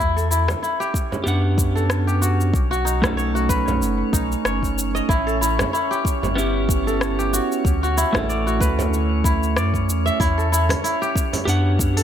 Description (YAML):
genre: organic downtempo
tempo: 94 BPM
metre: 4/4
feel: swing 56% on 16ths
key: E dorian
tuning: A4 = 441 Hz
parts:
  - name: kora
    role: arpeggios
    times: 0.0-12.0 s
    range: D#4 to E5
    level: -24 LUFS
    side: left 1 dB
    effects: tape echo
  - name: warm sub bass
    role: bass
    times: 0.0-12.0 s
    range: F#1 to F#2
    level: -22 LUFS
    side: equal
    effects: sidechain pumping
  - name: deep house drum kit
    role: drums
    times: 0.0-12.0 s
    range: hi-hat, rim click, shaker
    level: -28 LUFS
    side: left 1 dB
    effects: none
  - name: drifting glass-harmonics texture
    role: texture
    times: 0.6-12.0 s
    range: C#4 to C#5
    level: -29 LUFS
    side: right 3 dB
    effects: chorus, built-in reverb
  - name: frame drum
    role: percussion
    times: 0.5-11.4 s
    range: none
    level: -30 LUFS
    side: right 2 dB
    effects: none
  - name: electronic kick drum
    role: drums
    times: 0.9-11.9 s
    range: none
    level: -22 LUFS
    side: equal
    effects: none
  - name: clean electric guitar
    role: accompaniment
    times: 1.2-12.0 s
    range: A3 to F#5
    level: -25 LUFS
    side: right 3 dB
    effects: sidechain pumping, tape echo
room: light reverb, digital ambience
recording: none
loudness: -18 LUFS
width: side -9 dB against mid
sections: 0.0-12.0 A section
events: none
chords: 0.0 Em7; 2.5 B7; 5.1 A7; 7.6 Dmaj7; 10.2 Em7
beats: 0.62 1.26 1.90 | 2.54 3.18 3.82 4.46 | 5.09 5.73 6.37 7.01 | 7.65 8.29 8.92 9.56 | 10.20 10.84 11.48